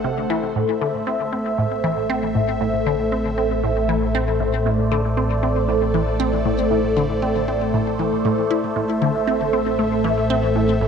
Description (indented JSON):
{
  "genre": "ambient, sequencer-driven space music",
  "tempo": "117 BPM",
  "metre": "4/4",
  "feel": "straight",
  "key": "A minor",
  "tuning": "A4 = 438 Hz",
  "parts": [
    { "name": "phased analog pad", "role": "sustained chords", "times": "0.0-10.9 s", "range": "A3 to F#5", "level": "-20 LUFS", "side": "equal", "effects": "phaser, chorus" },
    { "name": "resonant blip pluck", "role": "riff", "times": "0.0-10.9 s", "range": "A2 to E4", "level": "-24 LUFS", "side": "left 1 dB", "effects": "phaser, ping-pong delay" },
    { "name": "fat analog bass", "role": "bass", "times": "0.0-10.9 s", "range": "A1", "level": "-26 LUFS", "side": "equal", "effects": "none" }
  ],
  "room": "wet spring reverb, RT60 2.4 s",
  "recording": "echo-heavy mix",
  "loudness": "-18 LUFS",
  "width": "side -6 dB against mid",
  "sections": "0.6-10.9 A section",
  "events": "none",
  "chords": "0.0 Am"
}